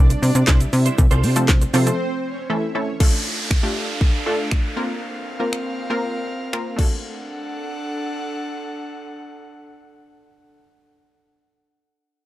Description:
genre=dance-pop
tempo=119 BPM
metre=4/4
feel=straight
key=D minor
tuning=A4 = 440 Hz
part: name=wide unison pluck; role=accompaniment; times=0.0-10.5 s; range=E3 to Bb4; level=-25 LUFS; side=left 1 dB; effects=sidechain pumping
part: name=plucky analog bass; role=bass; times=0.0-1.9 s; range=C2 to C3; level=-17 LUFS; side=equal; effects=sidechain pumping
part: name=direct-recorded clean electric guitar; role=riff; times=0.1-1.9 s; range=G3 to C5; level=-27 LUFS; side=right 5 dB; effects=ensemble chorus
part: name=house drum kit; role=drums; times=0.1-6.9 s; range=crash cymbal, finger snaps, handclaps, hi-hat, kick drum, shaker, snare drum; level=-18 LUFS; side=equal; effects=none
part: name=group handclap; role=percussion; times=0.5-1.6 s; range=none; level=-29 LUFS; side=left 2 dB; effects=none
part: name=airy breathy pad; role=sustained chords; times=3.3-10.5 s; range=C4 to F#5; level=-30 LUFS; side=equal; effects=chorus, sidechain pumping
part: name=downlifter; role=sound effects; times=3.0-7.0 s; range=none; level=-29 LUFS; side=right 2 dB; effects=none
room=little or no reverb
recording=dry, gritty hardware recording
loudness=-18 LUFS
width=side -15 dB against mid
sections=0.0-3.0 A section; 3.0-7.0 B section; 7.0-11.1 C section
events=drop 0.0-3.0; break 2.0-3.0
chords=0.0 Cadd9; 1.0 F/C; 2.0 A; 3.0 Dm; 4.8 Bbsus2; 6.8 D

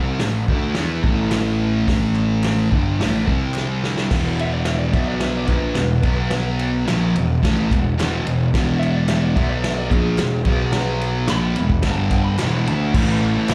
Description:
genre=garage rock duo or trio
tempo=108 BPM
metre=4/4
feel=straight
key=unclear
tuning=A4 = 440 Hz
part: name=thick fuzz guitar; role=riff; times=0.0-13.5 s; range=E2 to E4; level=-22 LUFS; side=equal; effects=distortion, slapback echo
part: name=fuzz picked electric bass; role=bass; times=0.0-13.5 s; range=E1 to E2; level=-26 LUFS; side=equal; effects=overdrive
part: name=vintage drum kit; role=drums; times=0.2-13.5 s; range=crash cymbal, hi-hat, kick drum, ride cymbal, snare drum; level=-25 LUFS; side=equal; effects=none
part: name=group handclap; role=percussion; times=0.2-13.5 s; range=none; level=-39 LUFS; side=equal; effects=none
part: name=electric slide guitar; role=melody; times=4.4-13.5 s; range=G#4 to B5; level=-32 LUFS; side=equal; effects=tape echo
room=light reverb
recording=live gig heard through the venue's PA, club reverb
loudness=-19 LUFS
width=mono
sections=0.0-4.1 A section; 4.1-12.9 B section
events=drum fill 3.6-4.1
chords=0.0 A5; 3.3 C5; 4.1 E5; 4.9 B5; 5.5 E5; 6.0 B5; 6.9 E5; 9.4 B5; 9.9 E; 10.5 B5; 11.3 E5; 11.8 G5; 12.4 E5; 12.9 A5

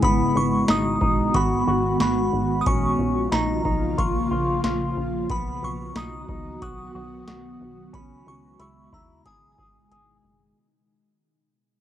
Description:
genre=dream pop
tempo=91 BPM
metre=4/4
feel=straight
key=G# minor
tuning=A4 = 440 Hz
part: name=glassy synth bell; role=melody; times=0.0-10.2 s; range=G#5 to D#6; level=-28 LUFS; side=right 1 dB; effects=chorus, analog delay
part: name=ethereal airy pad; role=sustained chords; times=0.0-10.6 s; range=C#3 to F#4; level=-26 LUFS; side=equal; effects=ensemble chorus, built-in reverb, cassette tape
part: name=electric guitar with an envelope filter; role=arpeggios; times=0.0-10.6 s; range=B3 to G#4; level=-28 LUFS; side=left 3 dB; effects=lush chorus, cassette tape, analog delay
part: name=plucky analog bass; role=bass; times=0.0-10.5 s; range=F#1 to D#2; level=-30 LUFS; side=equal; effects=none
part: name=booming analog drum machine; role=drums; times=0.0-10.1 s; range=hi-hat, kick drum, snare drum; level=-26 LUFS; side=equal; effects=overdrive, cassette tape
room=moderate booth ambience, RT60 0.2 s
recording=home recording on cassette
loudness=-20 LUFS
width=side -11 dB against mid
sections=0.0-10.6 A section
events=fade-out 0.0-10.6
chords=0.0 G#m7; 2.7 A#m; 5.3 B; 7.9 C#m; 9.3 G#m

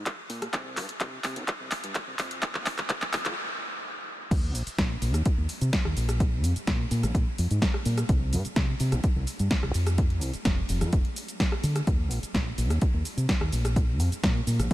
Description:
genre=filtered disco house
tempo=127 BPM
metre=4/4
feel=straight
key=Eb major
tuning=A4 = 439 Hz
part: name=fingered electric bass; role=bass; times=0.0-14.7 s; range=F1 to D3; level=-27 LUFS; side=equal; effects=sidechain pumping, high-pass filter, low-pass filter
part: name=electronic kick drum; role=drums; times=0.1-14.7 s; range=none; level=-26 LUFS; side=equal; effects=overdrive, high-pass filter on kick
part: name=punchy analog drum machine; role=drums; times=0.1-14.7 s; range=crash cymbal, handclaps, hi-hat, rim click, shaker, snare drum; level=-31 LUFS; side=equal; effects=overdrive, sidechain pumping on hats, sidechain pumping on perc, sidechain pumping on cymbals
room=light reverb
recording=none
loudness=-25 LUFS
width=side -16 dB against mid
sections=0.0-4.3 A section; 4.3-14.7 B section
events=build-up 0.0-4.3; drum fill 0.0-3.4; filter sweep on fingered electric bass 0.0-4.3; stop 3.4-4.3; drop 4.3-14.7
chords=none

